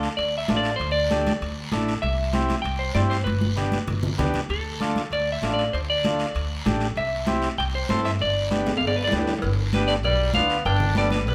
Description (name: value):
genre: latin, cumbia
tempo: 195 BPM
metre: 4/4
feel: straight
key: unclear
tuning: A4 = 441 Hz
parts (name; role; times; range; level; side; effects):
- clean electric guitar; melody; 0.0-11.3 s; A4 to G5; -28 LUFS; equal; spring reverb
- combo organ; accompaniment; 0.0-11.2 s; A3 to A4; -31 LUFS; equal; none
- upright bass; bass; 0.0-11.3 s; G1 to G2; -29 LUFS; equal; none
- guiro; percussion; 0.0-11.3 s; none; -38 LUFS; equal; none
- timbales and cowbell; percussion; 0.0-11.3 s; none; -37 LUFS; equal; none
- congas; percussion; 0.5-11.3 s; none; -31 LUFS; equal; none
- brilliant trombone; second line; 9.7-11.3 s; G3 to D4; -32 LUFS; equal; none
room: moderate studio reverb, RT60 1.0 s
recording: band playing live in one room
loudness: -24 LUFS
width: mono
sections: 0.0-9.4 A section; 9.4-11.3 B section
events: drum fill 3.3-4.5, 8.7-9.4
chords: 0.0 Dm; 2.0 C; 3.3 G; 4.5 Dm; 7.0 C; 8.2 G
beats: 0.18 0.49 | 0.80 1.11 1.42 1.73 | 2.03 2.34 2.65 2.96 | 3.27 3.58 3.88 4.19 | 4.50 4.81 5.12 5.42 | 5.73 6.04 6.35 6.66 | 6.97 7.27 7.58 7.89 | 8.20 8.51 8.81 9.12 | 9.43 9.74 10.05 10.35 | 10.66 10.97 11.28